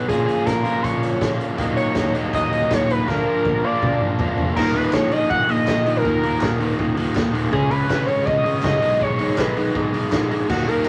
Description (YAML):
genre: indie rock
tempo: 162 BPM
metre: 4/4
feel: straight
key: Eb minor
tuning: A4 = 439 Hz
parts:
  - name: overdriven synth lead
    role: melody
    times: 0.0-10.9 s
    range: Gb4 to Gb5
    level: -24 LUFS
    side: equal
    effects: none
  - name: overdriven electric guitar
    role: riff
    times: 0.0-10.9 s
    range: Eb2 to F4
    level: -28 LUFS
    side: equal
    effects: none
  - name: overdriven semi-hollow guitar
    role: riff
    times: 0.0-10.9 s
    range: Eb2 to F4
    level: -26 LUFS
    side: equal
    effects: none
  - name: fuzz fingered electric bass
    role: bass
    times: 0.1-10.8 s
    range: Eb1 to Eb2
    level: -32 LUFS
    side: equal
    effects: overdrive
  - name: raw garage drum kit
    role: drums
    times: 0.1-10.8 s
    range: crash cymbal, hi-hat, kick drum, snare drum, toms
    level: -27 LUFS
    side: equal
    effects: none
  - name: combo organ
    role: sustained chords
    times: 1.6-10.9 s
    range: Eb3 to Bb5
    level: -36 LUFS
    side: equal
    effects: none
  - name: group handclap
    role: percussion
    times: 4.9-10.9 s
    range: none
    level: -38 LUFS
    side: equal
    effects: none
room: moderate studio reverb, RT60 0.6 s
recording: vinyl crackle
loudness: -20 LUFS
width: mono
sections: 0.0-4.6 A section; 4.6-10.9 B section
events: drum fill 3.1-4.6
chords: 0.1 Bbm; 1.6 Ebm; 3.1 Bb/D; 4.6 Ebm; 7.5 Dbadd9; 8.8 Abmadd9/Cb